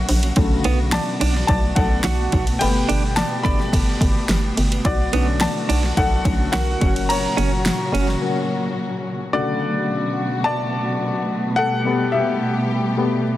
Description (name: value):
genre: piano-driven pop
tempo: 107 BPM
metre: 4/4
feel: straight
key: B minor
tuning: A4 = 443 Hz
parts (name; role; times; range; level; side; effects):
- warm upright piano; accompaniment; 0.0-13.4 s; C#3 to B5; -22 LUFS; left 3 dB; none
- dark studio string section; sustained chords; 0.0-13.4 s; A#2 to G4; -25 LUFS; equal; none
- hollow knocking FM bass; bass; 0.0-8.2 s; F#1 to B1; -21 LUFS; equal; none
- deep house drum kit; drums; 0.1-8.1 s; hi-hat, kick drum, ride cymbal, snare drum; -22 LUFS; equal; none
- direct-recorded clean electric guitar; riff; 0.7-8.1 s; B3 to F#4; -25 LUFS; right 8 dB; none
room: light reverb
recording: dense, heavily limited modern master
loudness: -17 LUFS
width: side -14 dB against mid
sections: 0.0-9.3 A section; 9.3-13.4 A section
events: upright piano solo 0.0-9.3, 9.3-13.4; break 8.2-9.3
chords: 0.4 Bm7; 2.6 Gadd9; 4.9 Bm7; 6.8 F#; 9.3 Bm7; 11.6 Gadd9